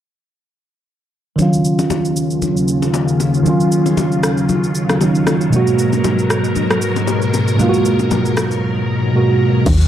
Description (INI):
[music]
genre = amapiano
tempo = 116 BPM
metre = 4/4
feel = swing 55% on 16ths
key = Eb minor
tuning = A4 = 440 Hz
[part]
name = mellow tine electric piano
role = accompaniment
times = 1.4-9.7 s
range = Cb3 to Gb4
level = -16 LUFS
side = right 2 dB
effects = phaser, low-pass filter
[part]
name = string machine, violins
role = sustained chords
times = 1.4-9.9 s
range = Eb2 to Bb4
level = -18 LUFS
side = left 2 dB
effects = ensemble chorus, low-pass filter
[part]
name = afro-pop drum kit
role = drums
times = 1.4-9.9 s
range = crash cymbal, kick drum, rim click, shaker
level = -22 LUFS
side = equal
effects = none
[part]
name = congas and bongos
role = percussion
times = 1.4-9.8 s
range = none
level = -23 LUFS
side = left 6 dB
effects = none
[part]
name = deep log drum bass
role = bass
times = 9.7-9.9 s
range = Eb2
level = -11 LUFS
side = equal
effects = none
[sound]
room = light reverb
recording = dark, warm production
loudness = -13 LUFS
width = side -10 dB against mid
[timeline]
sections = 1.4-9.7 A section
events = filter sweep 1.4-9.7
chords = 1.4 Ebm9; 5.5 Abm9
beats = | 1.39 1.91 2.42 2.94 | 3.46 3.98 4.49 5.01 | 5.53 6.04 6.56 7.08 | 7.59 8.11 8.63 9.15 | 9.66